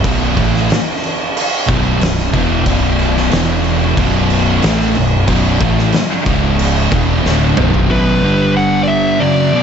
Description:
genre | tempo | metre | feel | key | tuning
stoner and doom metal | 92 BPM | 4/4 | straight | B minor | A4 = 440 Hz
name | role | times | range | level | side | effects
distorted electric guitar | riff | 0.0-9.6 s | B1 to A3 | -21 LUFS | equal | distortion
thick fuzz guitar | riff | 0.0-9.6 s | B1 to A3 | -18 LUFS | left 9 dB | distortion
thick fuzz guitar | riff | 0.0-9.6 s | B1 to A3 | -18 LUFS | right 9 dB | distortion
fuzz fingered electric bass | bass | 0.0-7.9 s | B0 to A1 | -18 LUFS | equal | overdrive
oversized low-tuned drum kit | drums | 0.0-7.9 s | crash cymbal, kick drum, snare drum, toms | -17 LUFS | equal | none
fuzz lead guitar | melody | 7.9-9.6 s | B4 to F#5 | -16 LUFS | left 1 dB | distortion, analog delay
room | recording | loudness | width
small room ambience | nothing above 7.9 kHz | -11 LUFS | side -7 dB against mid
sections
0.0-7.9 A section; 7.9-9.6 B section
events
drum fill 7.3-7.9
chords
0.0 B5; 3.3 E5; 4.0 B5; 6.3 C#5; 6.9 Bm; 7.9 B5; 8.2 G5

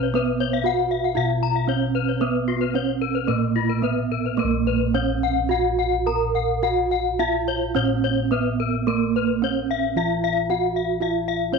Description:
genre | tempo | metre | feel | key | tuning
Balinese gamelan | 107-120 BPM | 4/4 | straight | Bb pelog | A4 = 436 Hz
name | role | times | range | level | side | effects
gamelan-type bronze metallophone | melody | 0.0-11.6 s | Bb3 to Bb4 | -23 LUFS | right 11 dB | none
gamelan-type bronze metallophone | arpeggios | 0.0-11.6 s | F4-30c to Bb5 | -24 LUFS | left 14 dB | slapback echo
gamelan-type bossed gongs | bass | 0.0-11.6 s | Bb1 to Cb5+20c | -27 LUFS | left 1 dB | none
room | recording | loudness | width
light reverb, small room ambience | 1960s-style stereo with parts hard left and right | -20 LUFS | side -5 dB against mid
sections
0.0-4.4 A section; 4.4-11.6 B section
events
none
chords
none

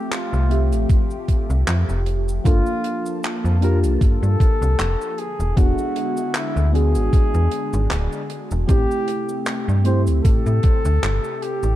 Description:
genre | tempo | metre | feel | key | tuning
vaporwave | 77 BPM | 4/4 | swing 55% on 16ths | unclear | A4 = 440 Hz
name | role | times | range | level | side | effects
warm flugelhorn | melody | 0.0-11.8 s | E4 to C5 | -28 LUFS | equal | tape echo
mellow FM electric piano | accompaniment | 0.0-11.8 s | A3 to E5 | -26 LUFS | left 1 dB | analog chorus
soft string machine | sustained chords | 0.0-11.8 s | C3 to A5 | -31 LUFS | equal | phaser, ensemble chorus
damped 70s drum kit | drums | 0.1-11.8 s | cabasa, handclaps, hi-hat | -29 LUFS | equal | studio reverb, gated reverb
slap-like FM bass | bass | 0.3-11.8 s | D1 to A2 | -18 LUFS | equal | none
electronic kick drum | drums | 0.9-10.8 s | none | -17 LUFS | equal | studio reverb
room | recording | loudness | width
small room ambience | none | -17 LUFS | side -14 dB against mid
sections
0.0-11.8 A section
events
none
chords
0.0 Fmaj9; 2.5 Gm9; 5.2 E7; 8.7 Am7

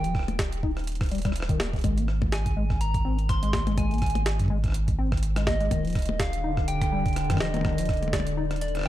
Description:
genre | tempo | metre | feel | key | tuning
IDM | 124 BPM | 4/4 | swing 56% on 16ths | Eb major | A4 = 441 Hz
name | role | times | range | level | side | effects
soft struck synth lead | melody | 0.0-8.9 s | D5 to C6 | -32 LUFS | right 1 dB | chorus, tape echo
deep acid bass | arpeggios | 0.0-8.9 s | Eb2 to Eb4 | -33 LUFS | left 4 dB | lush chorus, tape echo
warm sub bass | bass | 0.0-8.9 s | Eb1 to Ab1 | -28 LUFS | equal | none
jungle sampler-style drum kit | drums | 0.0-8.9 s | hi-hat, rim click, snare drum, toms | -33 LUFS | left 1 dB | none
electronic kick drum | drums | 0.1-8.2 s | none | -28 LUFS | equal | none
warbly tape-like pad | sustained chords | 5.7-8.9 s | D3 | -32 LUFS | left 1 dB | chorus, built-in reverb, sidechain pumping
room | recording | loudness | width
little or no reverb | dark, warm production | -23 LUFS | side -14 dB against mid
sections
0.0-8.9 A section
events
kick drops out 8.6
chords
0.0 Eb; 1.8 Ab; 5.7 Ebmaj7

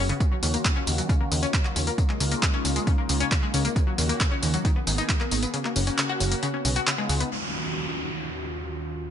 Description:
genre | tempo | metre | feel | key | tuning
uplifting trance | 135 BPM | 4/4 | straight | Eb minor | A4 = 445 Hz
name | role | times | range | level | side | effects
lush unison pad | sustained chords | 0.0-9.1 s | Eb2 to Ab4 | -32 LUFS | right 2 dB | chorus, phaser, sidechain pumping
analog pluck | arpeggios | 0.0-7.3 s | C#3 to Gb4 | -29 LUFS | left 5 dB | lush chorus, sidechain pumping, ping-pong delay
plucky analog bass | bass | 0.0-7.2 s | F#1 to Eb2 | -26 LUFS | equal | sidechain pumping
punchy analog drum machine | drums | 0.1-7.3 s | handclaps, hi-hat, tambourine | -27 LUFS | equal | overdrive, low-pass filter on hats, low-pass filter on cymbals, low-pass filter on snare, low-pass filter on perc
electronic kick drum | drums | 0.2-5.2 s | none | -24 LUFS | equal | overdrive
downlifter | sound effects | 7.3-9.1 s | none | -31 LUFS | equal | none
room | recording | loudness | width
little or no reverb | nothing above 10.9 kHz | -22 LUFS | side -9 dB against mid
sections
0.0-7.3 A section; 7.3-9.1 B section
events
filter sweep on analog synth pad 0.0-7.3, 7.3-9.1; kick drops out 5.5-7.3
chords
0.2 Ebm7; 2.0 Db6; 3.8 Ebm7; 4.7 Abmadd9; 5.5 Gb; 6.4 Bsus2; 6.9 Db7; 7.3 Ebm7

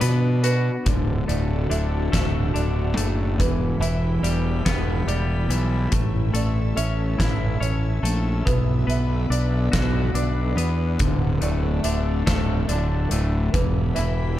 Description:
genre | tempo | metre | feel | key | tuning
post-rock | 47 BPM (dotted quarters) | 6/8 | straight | D major | A4 = 441 Hz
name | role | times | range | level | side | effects
soft additive organ-like pad | sustained chords | 0.0-14.4 s | D3 to B5 | -32 LUFS | equal | ensemble chorus, built-in reverb
felt-muted upright piano | arpeggios | 0.0-14.4 s | B4 to E5 | -34 LUFS | right 6 dB | slapback echo
twelve-string electric guitar | arpeggios | 0.0-14.4 s | D2 to F#4 | -27 LUFS | left 3 dB | slapback echo
fuzz fingered electric bass | bass | 0.0-14.4 s | D1 to B2 | -22 LUFS | equal | overdrive
huge arena drum kit | drums | 0.0-14.2 s | hi-hat, kick drum, snare drum | -26 LUFS | equal | none
room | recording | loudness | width
small room ambience | dark, warm production | -20 LUFS | side -13 dB against mid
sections
0.9-14.4 A section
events
none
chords
0.0 Bm; 0.9 Dadd9; 3.4 Em; 5.9 A; 8.5 Bm; 11.0 Dadd9; 13.5 Em

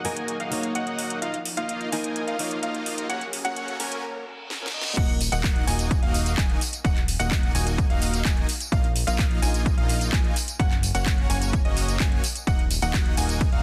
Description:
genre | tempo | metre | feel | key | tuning
EDM, festival progressive house | 128 BPM | 4/4 | straight | Eb minor | A4 = 439 Hz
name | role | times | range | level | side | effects
fingerpicked plugged-in steel-string acoustic guitar | accompaniment | 0.0-5.2 s | F3 to Eb5 | -35 LUFS | equal | sidechain pumping, dub echo
lush unison pad | sustained chords | 0.0-4.0 s | F3 to Bb4 | -43 LUFS | equal | none
clear grand piano | arpeggios | 0.0-13.6 s | Eb5 to Ab5 | -36 LUFS | equal | sidechain pumping, low-pass filter, dub echo
dense compressed supersaw | riff | 0.0-13.6 s | Bb3 to Ab5 | -34 LUFS | equal | sidechain pumping, low-pass filter, dub echo
house drum kit | drums | 0.0-13.6 s | crash cymbal, handclaps, hi-hat, ride cymbal, snare drum, tambourine | -32 LUFS | equal | overdrive
riser and reverse cymbal | sound effects | 2.8-5.0 s | none | -39 LUFS | equal | none
fat analog bass | bass | 5.0-13.6 s | Eb1 to Bb1 | -29 LUFS | equal | sidechain pumping
electronic kick drum | drums | 5.0-13.5 s | none | -26 LUFS | equal | overdrive
room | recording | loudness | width
light reverb, digital ambience | dense, heavily limited modern master, high-pass filter | -25 LUFS | mono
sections
0.0-5.0 A section; 5.0-13.6 B section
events
build-up 0.0-5.0; filter sweep on supersaw synth 0.0-5.0; filter sweep 0.0-5.0; reverse cymbal 4.0-5.0; drum fill 4.5-5.0; drop 5.0-13.6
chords
0.0 Ebm; 1.2 Bbsus4; 3.1 Gb; 5.0 Ebm; 8.7 Bbsus4; 10.6 Gb; 12.5 Ebm

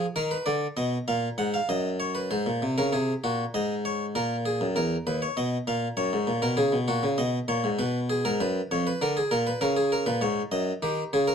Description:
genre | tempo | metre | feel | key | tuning
classical, baroque-style two-part invention for harpsichord | 98 BPM | 3/4 | straight | G# minor | A4 = 440 Hz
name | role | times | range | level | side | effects
harpsichord | solo | 0.0-11.3 s | D#2 to F#5 | -24 LUFS | equal | none
room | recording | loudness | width
moderate studio reverb, RT60 0.8 s | dark, warm production | -24 LUFS | side -7 dB against mid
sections
0.0-2.3 A section; 2.3-11.3 B section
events
none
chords
0.5 A#7; 1.7 D#m/F#; 2.3 G#7; 3.5 C#5/G#; 4.2 F#7; 5.4 B; 6.0 F#; 7.2 B; 7.8 Fdim; 9.0 A#/D; 9.6 A#m7; 10.2 G#5; 10.8 D#7

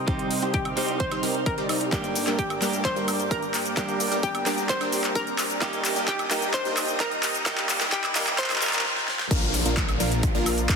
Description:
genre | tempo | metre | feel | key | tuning
EDM, festival progressive house | 130 BPM | 4/4 | straight | unclear | A4 = 440 Hz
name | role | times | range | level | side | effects
hollow square pluck | melody | 0.0-8.9 s | G4 to C5 | -31 LUFS | left 1 dB | chorus, tape echo
direct-recorded clean electric guitar | accompaniment | 0.0-8.9 s | G2 to Bb4 | -32 LUFS | right 4 dB | spring reverb, sidechain pumping, tape echo
lush unison pad | sustained chords | 0.0-10.8 s | Bb3 to F6 | -35 LUFS | equal | chorus, phaser, sidechain pumping
riser and downlifter | sound effects | 1.8-10.8 s | none | -35 LUFS | equal | none
supersaw stab | riff | 0.1-10.8 s | F3 to D5 | -29 LUFS | equal | sidechain pumping, low-pass filter, tape echo
wide detuned saw bass | bass | 0.1-10.8 s | Eb1 to C2 | -35 LUFS | equal | none
big-room dance drum kit | drums | 0.1-10.8 s | crash cymbal, handclaps, hi-hat, shaker, snare drum, woodblock | -27 LUFS | equal | overdrive
electronic kick drum | drums | 0.1-10.8 s | none | -28 LUFS | equal | overdrive
room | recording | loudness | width
moderate lush hall reverb, RT60 2.4 s | dense, heavily limited modern master, high-pass filter | -22 LUFS | side -5 dB against mid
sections
0.0-9.3 A section; 9.3-10.8 B section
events
build-up 0.0-9.3; filter sweep on supersaw synth 0.0-9.3; filter sweep 0.0-9.3; riser 1.8-8.8; drum fill 1.9-8.8, 8.8-9.3; stop 8.8-9.3; drop 9.3-10.8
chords
0.0 Cm; 1.9 Gm; 5.6 Eb; 9.3 Bb

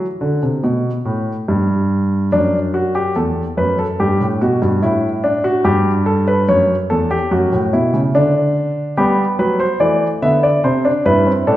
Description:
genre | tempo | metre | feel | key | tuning
classical, baroque-style 3-part fugue for grand piano | 72 BPM | 4/4 | straight | G major | A4 = 441 Hz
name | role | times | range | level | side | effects
warm baby grand piano | solo | 0.0-11.6 s | E2 to E5 | -14 LUFS | equal | none
room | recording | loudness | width
wet recital hall reverb, RT60 1.4 s | recorded in a church or concert hall | -14 LUFS | side -14 dB against mid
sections
0.0-11.6 A section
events
none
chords
0.0 N.C.; 2.3 D/F#; 4.0 G5; 5.6 A7/G; 7.3 D/F#; 9.0 G; 10.6 C

